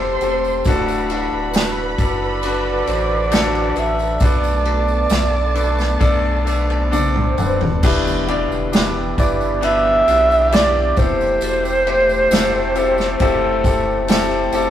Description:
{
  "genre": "pop ballad",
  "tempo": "67 BPM",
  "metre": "4/4",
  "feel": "straight",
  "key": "E minor",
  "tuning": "A4 = 441 Hz",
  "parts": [
    { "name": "dark alto saxophone", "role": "melody", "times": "0.0-14.5 s", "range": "A4 to E5", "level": "-19 LUFS", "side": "right 2 dB", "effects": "none" },
    { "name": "warm studio violin section", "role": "second line", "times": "0.0-7.8 s", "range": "A4 to C6", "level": "-27 LUFS", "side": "right 2 dB", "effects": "none" },
    { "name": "clear concert grand piano", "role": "accompaniment", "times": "0.0-14.7 s", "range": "A2 to D5", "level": "-20 LUFS", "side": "left 3 dB", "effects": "none" },
    { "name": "sweeping resonant pad", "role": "sustained chords", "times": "0.0-14.7 s", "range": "D3 to A4", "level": "-28 LUFS", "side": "right 1 dB", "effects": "chorus" },
    { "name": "sub bass with octave", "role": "bass", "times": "0.0-14.7 s", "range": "D1 to B1", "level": "-23 LUFS", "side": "equal", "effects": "none" },
    { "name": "unplugged drum kit", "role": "drums", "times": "0.2-14.7 s", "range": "crash cymbal, kick drum, ride cymbal, snare drum, toms", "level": "-21 LUFS", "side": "equal", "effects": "none" },
    { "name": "tambourine", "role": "percussion", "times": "0.2-14.7 s", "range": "none", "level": "-38 LUFS", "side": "right 2 dB", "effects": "none" },
    { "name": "swell and impact", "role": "sound effects", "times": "6.7-11.4 s", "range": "none", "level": "-28 LUFS", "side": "equal", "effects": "none" }
  ],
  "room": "wet stone room reverb, RT60 1.0 s",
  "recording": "rough rehearsal-room recording, tube saturation",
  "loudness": "-15 LUFS",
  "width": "side -10 dB against mid",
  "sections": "0.0-7.8 A section; 7.8-14.7 A section",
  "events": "swell 6.7-7.8; drum fill 6.9-7.8; impact 7.8-11.4",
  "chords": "0.0 Am7/E; 0.7 D; 4.2 Bm7; 7.8 Em7; 11.0 Am7/E"
}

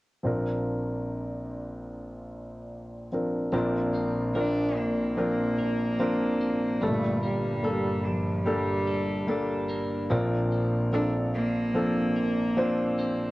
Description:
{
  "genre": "pop",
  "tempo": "73 BPM",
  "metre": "4/4",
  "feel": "straight",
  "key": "Bb major",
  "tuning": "A4 = 440 Hz",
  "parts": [
    { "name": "warm grand piano", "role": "accompaniment", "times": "0.2-13.3 s", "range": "G1 to C5", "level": "-27 LUFS", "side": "equal", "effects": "cassette tape" },
    { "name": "twelve-string electric guitar", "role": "arpeggios", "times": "3.5-13.3 s", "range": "G2 to Bb4", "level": "-36 LUFS", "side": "equal", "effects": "phaser, cassette tape" },
    { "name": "warm cello", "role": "melody", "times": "4.4-13.3 s", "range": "F3 to D4", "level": "-29 LUFS", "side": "equal", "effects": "none" }
  ],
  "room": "light reverb",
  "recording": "home recording on cassette",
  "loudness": "-25 LUFS",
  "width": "side -19 dB against mid",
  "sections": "0.2-3.5 A section; 3.5-13.3 B section",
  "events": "none",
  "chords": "0.2 Bbadd9; 6.8 Gmadd9; 10.1 Bbadd9"
}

